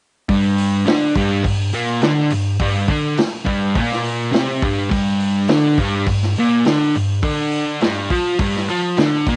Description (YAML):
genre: garage rock duo or trio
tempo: 104 BPM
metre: 4/4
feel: straight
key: unclear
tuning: A4 = 445 Hz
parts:
  - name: fuzz guitar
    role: riff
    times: 0.3-9.4 s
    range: G2 to F4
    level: -19 LUFS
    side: equal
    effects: distortion, cassette tape
  - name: vintage drum kit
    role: drums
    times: 0.3-9.4 s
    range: hi-hat, kick drum, snare drum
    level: -24 LUFS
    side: equal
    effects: cassette tape
room: light reverb, studio reverb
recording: home recording on cassette, nothing above 10.5 kHz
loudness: -18 LUFS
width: mono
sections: 0.3-9.4 A section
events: none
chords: 0.3 G5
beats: | 0.29 0.87 1.45 2.03 | 2.61 3.19 3.77 4.34 | 4.92 5.50 6.08 6.66 | 7.24 7.82 8.40 8.98